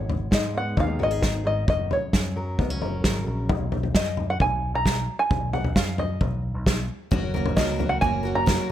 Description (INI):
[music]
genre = indie folk with a building arrangement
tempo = 132 BPM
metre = 4/4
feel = straight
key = unclear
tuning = A4 = 440 Hz
[part]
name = open-back banjo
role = melody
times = 0.0-8.7 s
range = C#5 to A#5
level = -26 LUFS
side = equal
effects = none
[part]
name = fingerpicked steel-string acoustic guitar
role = accompaniment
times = 0.0-5.3 s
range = F#2 to A#4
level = -33 LUFS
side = left 1 dB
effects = none
[part]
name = picked electric bass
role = bass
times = 0.0-8.6 s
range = F#1 to G#2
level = -29 LUFS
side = equal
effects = none
[part]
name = unplugged drum kit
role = drums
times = 0.1-8.6 s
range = kick drum, snare drum, toms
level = -24 LUFS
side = equal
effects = none
[part]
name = picked twelve-string acoustic guitar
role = accompaniment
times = 7.1-8.7 s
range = F#3 to A#4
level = -32 LUFS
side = left 6 dB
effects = none
[part]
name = dark upright piano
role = arpeggios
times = 7.1-8.7 s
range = F#3 to F#4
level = -29 LUFS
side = right 7 dB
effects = analog delay
[sound]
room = small room ambience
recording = none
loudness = -22 LUFS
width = side -11 dB against mid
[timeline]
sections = 0.0-3.5 A section; 3.5-8.7 B section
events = none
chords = 0.0 G#m; 1.7 F#; 3.5 B; 7.1 F#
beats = 0.32 0.77 1.23 | 1.68 2.13 2.59 3.04 | 3.49 3.95 4.40 4.85 | 5.31 5.76 6.21 6.66 | 7.12 7.57 8.02 8.47